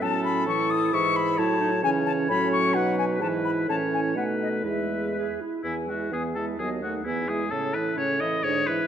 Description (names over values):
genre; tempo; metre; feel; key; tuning
quick classical-period movement for wind quintet; 130 BPM; 2/4; rubato; E major; A4 = 440 Hz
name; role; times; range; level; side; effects
silver concert flute; melody; 0.0-8.9 s; C#5 to D#6; -29 LUFS; left 6 dB; none
clear oboe; second line; 0.0-8.9 s; E4 to E5; -30 LUFS; left 2 dB; none
mellow French horn; accompaniment; 0.0-8.9 s; C#3 to A3; -31 LUFS; equal; none
mellow clarinet; accompaniment; 0.0-8.9 s; B3 to G#4; -30 LUFS; right 6 dB; none
dark bassoon; bass; 0.0-8.8 s; D#2 to C#3; -30 LUFS; right 2 dB; none
room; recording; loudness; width
wet concert hall reverb, RT60 2.0 s; none; -23 LUFS; side -9 dB against mid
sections
0.0-5.6 A section; 5.6-8.9 A section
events
none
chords
0.0 A; 0.9 E/G#; 1.4 A; 1.8 C#m; 2.3 F#m/A; 2.8 B; 3.2 E/G#; 3.7 A; 4.2 B7; 4.6 E; 6.6 B7/D#; 7.1 E; 7.5 A